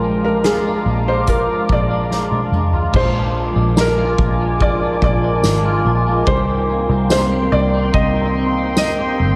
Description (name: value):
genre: dream pop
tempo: 72 BPM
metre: 4/4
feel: straight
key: Bb mixolydian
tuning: A4 = 440 Hz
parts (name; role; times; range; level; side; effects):
- felt-muted upright piano; melody; 0.0-9.4 s; Ab4 to Eb5; -24 LUFS; equal; tape echo
- warbly tape-like pad; sustained chords; 0.0-9.4 s; Ab3 to D6; -23 LUFS; equal; chorus, built-in reverb
- clean electric guitar; arpeggios; 0.0-9.4 s; Eb3 to G4; -27 LUFS; equal; ensemble chorus, tape echo
- vintage muted fingered electric bass; bass; 0.0-9.4 s; G1 to C2; -22 LUFS; equal; none
- small celesta; texture; 0.0-9.4 s; Ab4 to C6; -35 LUFS; equal; none
- soft-mallet drum kit; drums; 0.4-9.0 s; crash cymbal, hi-hat, kick drum, ride cymbal, snare drum, tambourine, toms; -23 LUFS; equal; none
room: wet plate reverb, RT60 2.1 s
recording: dreamy mix soaked in reverb, lossy compression artefacts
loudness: -17 LUFS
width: mono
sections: 0.0-2.9 A section; 2.9-9.4 B section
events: drum fill 2.1-2.9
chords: 0.0 Bb7; 6.3 Cm7